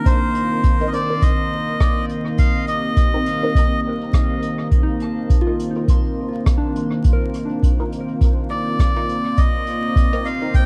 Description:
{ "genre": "ambient dub", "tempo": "103 BPM", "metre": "4/4", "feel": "swing 60% on 16ths", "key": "C minor", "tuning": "A4 = 439 Hz", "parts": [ { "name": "melodica", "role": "melody", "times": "0.0-3.8, 8.5-10.7 s", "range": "C5 to G5", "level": "-26 LUFS", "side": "equal", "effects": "tape echo" }, { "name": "deep dark ambient pad", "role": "sustained chords", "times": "0.0-10.7 s", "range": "Eb3 to C5", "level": "-26 LUFS", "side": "equal", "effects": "chorus, built-in reverb" }, { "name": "soft synth bell", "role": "arpeggios", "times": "0.0-9.4 s", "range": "D4 to C6", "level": "-32 LUFS", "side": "equal", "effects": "chorus, phaser, tape echo" }, { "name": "electronic kick drum", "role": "drums", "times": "0.1-10.7 s", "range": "none", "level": "-19 LUFS", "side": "equal", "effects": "none" }, { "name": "vintage brush drum kit", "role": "drums", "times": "0.1-10.7 s", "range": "hi-hat, rim click", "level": "-38 LUFS", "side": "equal", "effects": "dub echo" }, { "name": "filtered dub chord stab", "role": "stabs", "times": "0.8-10.5 s", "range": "C4 to Bb4", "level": "-31 LUFS", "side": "equal", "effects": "phaser, lush chorus, dub echo" } ], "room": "light reverb", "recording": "echo-heavy mix, vinyl crackle", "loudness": "-19 LUFS", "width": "mono", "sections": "0.1-10.7 A section", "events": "none", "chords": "0.1 Cm7; 4.7 F7sus4; 9.4 Cm7" }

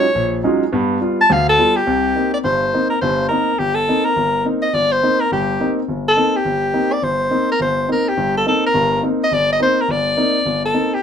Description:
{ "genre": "jazz", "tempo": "210 BPM", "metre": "4/4", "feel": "swing 61% on 8ths", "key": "C dorian", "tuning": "A4 = 441 Hz", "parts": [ { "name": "clear soprano saxophone", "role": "melody", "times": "0.0-11.0 s", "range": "G4 to A5", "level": "-16 LUFS", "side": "equal", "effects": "none" }, { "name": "warm grand piano", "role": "accompaniment", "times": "0.0-10.9 s", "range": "G1 to F4", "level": "-19 LUFS", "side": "left 1 dB", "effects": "none" } ], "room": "moderate studio reverb, RT60 0.5 s", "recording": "minimal, uncompressed stereo recording", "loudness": "-15 LUFS", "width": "side -8 dB against mid", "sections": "0.0-1.9 A section; 1.9-11.0 B section", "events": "soprano saxophone solo 0.0-1.9", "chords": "0.0 Ebm11; 0.7 G7; 1.9 Cm7" }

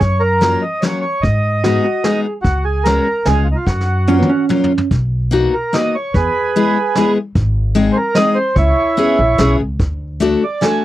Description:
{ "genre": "musette waltz", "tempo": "147 BPM", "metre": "3/4", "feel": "straight", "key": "F# major, B major from 4.9 s", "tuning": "A4 = 442 Hz", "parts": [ { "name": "mellow accordion", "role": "melody", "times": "0.0-10.8 s", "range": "D#4 to G#5", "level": "-17 LUFS", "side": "right 2 dB", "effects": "none" }, { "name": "upright bass", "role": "bass", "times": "0.0-10.3 s", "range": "G#1 to G#2", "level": "-17 LUFS", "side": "equal", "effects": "none" }, { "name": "vintage brush drum kit", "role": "drums", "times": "0.0-10.7 s", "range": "hi-hat, kick drum, snare drum, toms", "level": "-19 LUFS", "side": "equal", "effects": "none" }, { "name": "picked steel-string acoustic guitar", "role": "accompaniment", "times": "0.4-10.8 s", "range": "F#3 to A4", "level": "-16 LUFS", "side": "left 4 dB", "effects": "none" }, { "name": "vintage hollow-body jazz guitar", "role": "second line", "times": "1.6-4.9 s", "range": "B3 to G#4", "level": "-16 LUFS", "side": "right 4 dB", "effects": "none" } ], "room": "little or no reverb", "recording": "dry, close 1970s-style studio recording", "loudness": "-13 LUFS", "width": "side -14 dB against mid", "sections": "0.0-4.9 A section; 4.9-10.8 B section", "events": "drum fill 3.7-4.9", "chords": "0.0 F#maj7; 1.2 G#m7; 2.5 C#7sus4; 3.3 C#7; 3.7 F#maj7; 4.9 Bmaj7; 6.1 E; 7.4 G#; 8.6 C#m7; 9.8 D" }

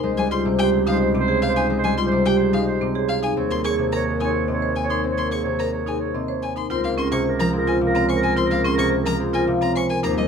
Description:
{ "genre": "classical, minimalist pattern music", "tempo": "108 BPM", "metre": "3/4", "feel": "straight", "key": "unclear", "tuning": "A4 = 439 Hz", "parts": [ { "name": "vibraphone with medium mallets", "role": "melody", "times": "0.0-10.3 s", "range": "G4 to Ab5", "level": "-27 LUFS", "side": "left 8 dB", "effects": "none" }, { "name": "warm clarinet", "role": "second line", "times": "0.0-10.2 s", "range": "G4 to Db5", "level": "-27 LUFS", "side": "right 3 dB", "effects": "none" }, { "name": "concert harp", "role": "accompaniment", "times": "0.0-10.3 s", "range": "C3 to C4", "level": "-25 LUFS", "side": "left 1 dB", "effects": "none" }, { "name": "marimba with hard mallets", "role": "arpeggios", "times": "0.0-10.2 s", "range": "C4 to C5", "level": "-24 LUFS", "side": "right 3 dB", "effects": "none" }, { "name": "clear double bass", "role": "bass", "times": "0.0-10.3 s", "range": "Db2 to Eb2", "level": "-27 LUFS", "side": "right 3 dB", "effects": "none" }, { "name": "rich violin", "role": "arpeggios", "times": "0.2-10.3 s", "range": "Eb5 to Db6", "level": "-28 LUFS", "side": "left 4 dB", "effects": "none" } ], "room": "light reverb", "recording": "none", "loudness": "-18 LUFS", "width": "side -6 dB against mid", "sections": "0.0-6.7 A section; 6.7-10.3 B section", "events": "none", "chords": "0.0 Dbmaj9; 3.4 Eb7sus4; 6.7 Db6" }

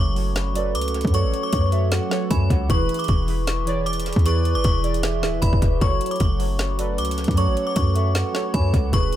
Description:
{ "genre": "hip hop, trap", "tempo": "154 BPM", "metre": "4/4", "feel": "half-time", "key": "F# minor", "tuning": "A4 = 440 Hz", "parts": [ { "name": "metallic FM bell", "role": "melody", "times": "0.0-9.2 s", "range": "B5 to D6", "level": "-29 LUFS", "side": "left 2 dB", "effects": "chorus, phaser, dub echo" }, { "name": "warbly lo-fi synth keys", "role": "accompaniment", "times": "0.0-9.2 s", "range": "E3 to D5", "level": "-27 LUFS", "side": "equal", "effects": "chorus, phaser" }, { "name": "airy breathy pad", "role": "sustained chords", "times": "0.1-9.2 s", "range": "E3 to B4", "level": "-33 LUFS", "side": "equal", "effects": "chorus" }, { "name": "warm 808-style bass", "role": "bass", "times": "0.0-9.1 s", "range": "D1 to F#2", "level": "-22 LUFS", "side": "equal", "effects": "none" }, { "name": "trap drum kit", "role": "drums", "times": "0.2-9.2 s", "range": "hi-hat, kick drum, snare drum", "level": "-23 LUFS", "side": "equal", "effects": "none" }, { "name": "hollow clarinet-like synth lead", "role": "second line", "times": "0.6-9.2 s", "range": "B4 to G#5", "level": "-31 LUFS", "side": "right 6 dB", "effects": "chorus, dub echo" } ], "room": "little or no reverb", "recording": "echo-heavy mix", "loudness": "-19 LUFS", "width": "side -12 dB against mid", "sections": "0.0-9.2 A section", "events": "none", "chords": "0.0 F#m; 2.7 E; 5.8 F#m" }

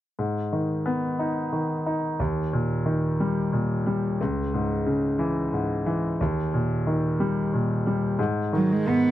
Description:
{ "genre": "pop", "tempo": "60 BPM (dotted quarters)", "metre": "6/8", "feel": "straight", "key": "G# minor", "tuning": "A4 = 444 Hz", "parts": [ { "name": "bright concert grand piano", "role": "accompaniment", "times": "0.2-9.1 s", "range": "C#2 to D#4", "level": "-23 LUFS", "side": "equal", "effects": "none" }, { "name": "dark cello", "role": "melody", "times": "8.6-9.1 s", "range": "F#3 to B3", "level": "-20 LUFS", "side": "right 3 dB", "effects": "none" } ], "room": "moderate booth ambience, RT60 0.2 s", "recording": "dry, close 1970s-style studio recording", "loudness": "-23 LUFS", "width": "side -13 dB against mid", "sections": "0.2-8.2 A section", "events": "none", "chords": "0.2 G#m; 2.2 D#; 4.2 C#m; 6.2 D#; 8.2 G#m" }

